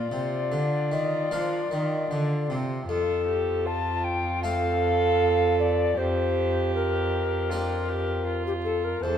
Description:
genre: classical, baroque-style sonata movement with continuo.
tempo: 78 BPM.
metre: 4/4.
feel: straight.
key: F major.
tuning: A4 = 440 Hz.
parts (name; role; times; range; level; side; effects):
alto recorder; melody; 0.0-9.2 s; G4 to A5; -28 LUFS; left 5 dB; none.
dark violin; second line; 0.0-9.2 s; F4 to A4; -29 LUFS; right 6 dB; none.
harpsichord; accompaniment; 0.0-9.2 s; E2 to G4; -32 LUFS; left 1 dB; none.
rich cello; bass; 0.0-9.2 s; E2 to F3; -29 LUFS; right 1 dB; none.
room: wet recital hall reverb, RT60 1.4 s.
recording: dark, warm production.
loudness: -23 LUFS.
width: side -9 dB against mid.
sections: 0.0-2.9 A section; 2.9-9.2 A section.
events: none.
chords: 0.0 Bb; 2.9 F; 6.0 Gm7/F.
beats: 0.52 1.32 2.11 | 2.89 3.67 4.43 5.20 | 5.97 6.74 7.50 8.27 | 9.03.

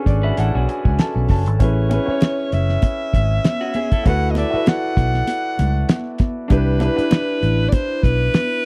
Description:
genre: lush 1970s-style soul.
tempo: 98 BPM.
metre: 4/4.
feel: swing 54% on 16ths.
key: A major.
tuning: A4 = 439 Hz.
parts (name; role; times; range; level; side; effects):
warm concert grand piano; accompaniment; 0.0-8.7 s; C#4 to A5; -26 LUFS; equal; none.
vibraphone with soft mallets; texture; 0.0-1.9, 6.8-8.7 s; E4 to G#5; -34 LUFS; equal; none.
vintage muted fingered electric bass; bass; 0.1-8.3 s; F#1 to D2; -21 LUFS; equal; none.
cloth-damped thuddy drum kit; drums; 0.1-8.5 s; hi-hat, kick drum, snare drum; -20 LUFS; equal; none.
electric guitar through a small old amp; riff; 0.2-4.2 s; C#4 to B4; -31 LUFS; equal; none.
breathy alto saxophone; melody; 1.6-8.7 s; B4 to F#5; -26 LUFS; equal; none.
congas; percussion; 1.6-8.5 s; none; -28 LUFS; equal; none.
room: little or no reverb.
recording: dry, close 1970s-style studio recording.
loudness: -18 LUFS.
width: mono.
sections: 0.0-8.7 A section.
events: grand piano fill 0.0-1.6.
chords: 0.0 Bm7; 1.6 Amaj7; 4.1 D6; 6.5 Cmaj7.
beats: 0.37 0.99 | 1.60 2.21 2.83 3.44 | 4.06 4.67 5.28 5.89 | 6.51 7.12 7.73 8.35.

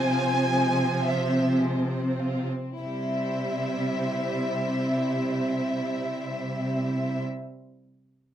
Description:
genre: classical, slow romantic movement for string orchestra.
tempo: 31-44 BPM (dotted quarters).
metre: 6/8.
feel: rubato.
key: C major.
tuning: A4 = 441 Hz.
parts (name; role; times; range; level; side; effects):
warm studio violin section; melody; 0.0-7.2 s; E5 to Ab5; -30 LUFS; left 1 dB; none.
rich studio violin section; second line; 0.0-7.2 s; Ab3 to C5; -34 LUFS; equal; none.
rich studio viola section; accompaniment; 0.0-7.2 s; F3 to C4; -30 LUFS; right 1 dB; none.
rich studio cello section; bass; 0.0-7.2 s; C3; -28 LUFS; right 1 dB; none.
room: light reverb.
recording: close, detailed microphones.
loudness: -24 LUFS.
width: side -10 dB against mid.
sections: 0.0-2.8 A section; 2.8-8.3 B section.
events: slowing down 0.0-2.8.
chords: 0.0 Fm/C; 2.8 C.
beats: 1.05 | 2.81 4.45 | 6.11.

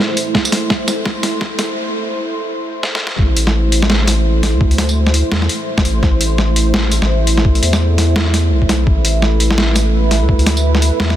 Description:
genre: half-time drum and bass.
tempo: 169 BPM.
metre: 4/4.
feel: swing 58% on 16ths, half-time.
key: A minor.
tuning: A4 = 439 Hz.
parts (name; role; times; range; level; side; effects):
dark analog pad; sustained chords; 0.0-11.2 s; A3 to C5; -20 LUFS; right 2 dB; chorus, sidechain pumping.
saturated sub bass; bass; 0.2-11.2 s; A1 to E2; -14 LUFS; equal; high-pass filter.
boom bap sampler-style drum kit; drums; 0.2-11.2 s; hi-hat, snare drum, tambourine; -17 LUFS; equal; overdrive, studio reverb.
electronic kick drum; drums; 0.3-10.4 s; none; -15 LUFS; equal; overdrive, studio reverb.
room: light reverb, digital ambience.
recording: dense, heavily limited modern master, high-pass filter.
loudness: -12 LUFS.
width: side -12 dB against mid.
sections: 0.0-3.2 A section; 3.2-11.2 B section.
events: build-up 0.0-3.2; drum fill 0.0-1.8, 2.8-3.2; break 1.8-3.2; drop 3.2-11.2.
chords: 0.0 Am.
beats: | 0.35 0.70 1.06 1.41 | 1.77 2.12 2.48 2.83 | 3.19 3.54 3.90 4.25 | 4.61 4.96 5.32 5.67 | 6.03 6.38 6.74 7.09 | 7.45 7.80 8.16 8.51 | 8.87 9.22 9.58 9.93 | 10.29 10.64 11.00.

